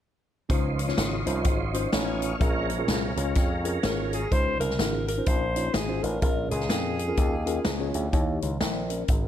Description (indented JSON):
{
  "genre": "uptempo gospel",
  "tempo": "126 BPM",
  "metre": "4/4",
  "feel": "swing 60% on 8ths",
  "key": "Db major",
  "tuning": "A4 = 440 Hz",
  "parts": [
    { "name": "mellow tine electric piano", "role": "accompaniment", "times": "0.5-9.3 s", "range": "Ab2 to G5", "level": "-31 LUFS", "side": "left 1 dB", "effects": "medium stereo tremolo" },
    { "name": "tonewheel organ", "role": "sustained chords", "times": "0.5-4.3 s", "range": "F3 to Ab5", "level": "-33 LUFS", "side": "right 3 dB", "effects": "slow rotary speaker, chorus vibrato" },
    { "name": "slap bass with an envelope filter", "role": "bass", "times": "0.5-9.3 s", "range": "Ab1 to F2", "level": "-30 LUFS", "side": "equal", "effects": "none" },
    { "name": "swinging big-band drum kit", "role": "drums", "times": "0.5-9.2 s", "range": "hi-hat, kick drum, snare drum", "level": "-27 LUFS", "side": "equal", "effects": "none" },
    { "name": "mellow alto saxophone", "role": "melody", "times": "3.8-7.9 s", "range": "Ab4 to C5", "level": "-30 LUFS", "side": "left 1 dB", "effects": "none" }
  ],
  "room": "small room ambience",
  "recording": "none",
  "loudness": "-24 LUFS",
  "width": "side -10 dB against mid",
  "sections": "0.5-4.3 A section; 4.3-9.3 B section",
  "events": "none",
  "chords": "0.5 Dbmaj9; 2.4 Bbm7; 4.3 Dbmaj9; 6.2 Bbm7; 8.1 Eb7b9",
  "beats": "| 0.50 0.98 1.45 1.93 | 2.41 2.89 3.36 3.84 | 4.32 4.79 5.27 5.75 | 6.23 6.70 7.18 7.66 | 8.14 8.61 9.09"
}